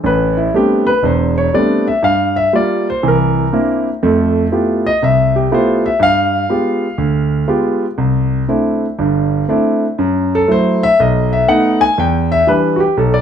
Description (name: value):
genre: solo jazz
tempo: 121 BPM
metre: 4/4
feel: swing 67% on 8ths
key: C major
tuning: A4 = 441 Hz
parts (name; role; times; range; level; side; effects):
- warm concert grand piano; solo; 0.0-13.2 s; E1 to Ab5; -12 LUFS; equal; none
room: moderate large studio reverb, RT60 1.2 s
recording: none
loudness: -12 LUFS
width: side -8 dB against mid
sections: 0.0-12.0 A section; 12.0-13.2 A section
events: grand piano solo 0.0-13.2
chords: 0.0 Am11; 2.0 Gm7; 3.0 C9; 4.0 Fmaj9#11; 6.0 G7b9; 8.0 C69; 10.0 F#m7b5; 11.0 B7; 12.0 Em7